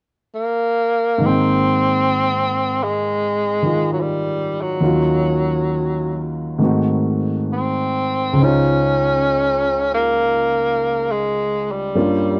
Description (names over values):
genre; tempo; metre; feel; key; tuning
jazz ballad; 67 BPM; 4/4; swing 68% on 8ths; Ab major; A4 = 439 Hz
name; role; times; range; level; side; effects
breathy tenor saxophone; melody; 0.3-12.4 s; Gb3 to Db4; -21 LUFS; equal; none
warm concert grand piano; accompaniment; 1.2-12.4 s; Db2 to G5; -22 LUFS; equal; none
room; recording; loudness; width
studio ambience; dry, close 1970s-style studio recording; -19 LUFS; mono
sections
0.0-1.2 A section; 1.2-12.4 B section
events
none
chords
0.0 N.C.; 1.2 Abmaj7; 4.8 Ebm9; 6.6 Ab7b9; 8.4 Dbmaj9